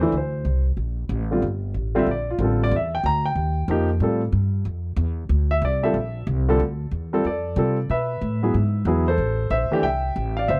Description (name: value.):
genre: jazz piano trio.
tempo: 186 BPM.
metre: 4/4.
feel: swing 63% on 8ths.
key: D minor.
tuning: A4 = 440 Hz.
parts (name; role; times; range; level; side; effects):
warm grand piano; melody; 0.0-10.6 s; D3 to Bb5; -25 LUFS; equal; none.
upright bass; bass; 0.0-10.6 s; F#1 to C3; -25 LUFS; equal; none.
room: little or no reverb.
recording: dry, close 1970s-style studio recording.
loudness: -23 LUFS.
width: mono.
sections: 0.0-6.6 A section; 6.6-10.6 B section.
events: grand piano solo 0.0-6.6.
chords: 0.1 D5; 1.4 Gm9; 2.7 Gm6; 3.4 Ebadd9; 4.0 Dm7; 7.9 B5; 8.5 E; 9.2 Am7.